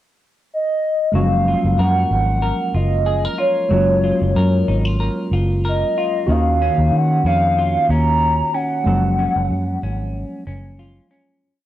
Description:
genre	indie pop, bedroom pop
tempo	93 BPM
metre	4/4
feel	swing 55% on 16ths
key	F# major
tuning	A4 = 440 Hz
part	hollow clarinet-like synth lead	melody	0.5-10.5 s	C#5 to A#5	-19 LUFS	equal	lush chorus
part	semi-hollow electric guitar	accompaniment	1.1-11.7 s	D#3 to A#4	-23 LUFS	left 3 dB	lush chorus, warbly pitch drift
part	tine electric piano	accompaniment	1.1-11.5 s	E#3 to F#4	-25 LUFS	right 2 dB	none
part	vintage muted fingered electric bass	bass	1.1-11.0 s	F#1 to D#3	-18 LUFS	equal	transformer saturation
room	light reverb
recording	dry, gritty hardware recording, transformer saturation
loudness	-15 LUFS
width	side -13 dB against mid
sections	0.0-1.1 pickup bar; 1.1-11.4 A section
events	fade-out 8.9-11.4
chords	0.0 N.C.; 1.1 F#maj9; 6.3 D#m9; 8.9 F#maj7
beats	0.51 | 1.15 1.79 2.43 3.08 | 3.72 4.36 5.00 5.65 | 6.29 6.93 7.58 8.22 | 8.86 9.51 10.15 10.80

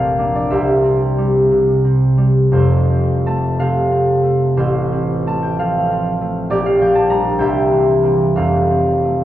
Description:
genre	classical, solo harp piece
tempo	52-69 BPM (dotted quarters)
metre	6/8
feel	rubato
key	F major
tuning	A4 = 444 Hz
part	concert harp	solo	0.0-9.2 s	F1 to Bb5	-13 LUFS	equal	none
room	wet church reverb, RT60 3.0 s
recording	worn, warbling old tape, cassette tape, warbly pitch drift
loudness	-13 LUFS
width	side -13 dB against mid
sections	0.0-9.2 A section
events	none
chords	0.0 Bb; 0.5 C; 2.5 F; 4.6 F/A; 6.5 Gm7/Bb; 7.4 C7; 8.4 F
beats	| 0.50 1.50 | 2.52 3.60 | 4.58 5.59 | 6.50 7.39 | 8.35

